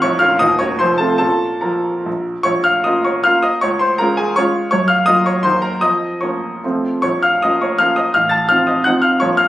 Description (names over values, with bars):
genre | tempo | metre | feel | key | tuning
classical, romantic triple-time dance for piano with dotted rhythms | 133-178 BPM | 3/4 | rubato | Bb minor | A4 = 440 Hz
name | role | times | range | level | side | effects
clear baby grand piano | solo | 0.0-9.5 s | Bb0 to A6 | -13 LUFS | equal | none
room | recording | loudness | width
moderate large studio reverb, RT60 0.9 s | recorded on a phone in the room, studio reverb | -13 LUFS | side -14 dB against mid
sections
0.0-2.5 A section; 2.5-9.5 A section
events
none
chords
0.0 Bbm; 0.4 Ebm7; 0.8 F; 1.2 Bbm; 3.6 Db; 4.7 Gbmaj7; 5.4 Cm7b5/Eb; 5.8 Bbm/F; 6.6 F; 7.0 Bbm; 8.1 F7/A